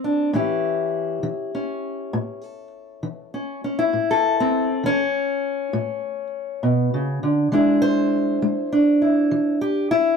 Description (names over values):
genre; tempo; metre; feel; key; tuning
acoustic country blues, solo or duo; 67 BPM (dotted quarters); 12/8; straight; A mixolydian; A4 = 440 Hz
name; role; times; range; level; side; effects
fingerpicked steel-string acoustic guitar; solo; 0.0-10.2 s; A2 to C5; -19 LUFS; left 1 dB; none
room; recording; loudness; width
light reverb; none; -19 LUFS; side -6 dB against mid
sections
0.0-10.2 A section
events
none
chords
0.3 A7; 7.5 E7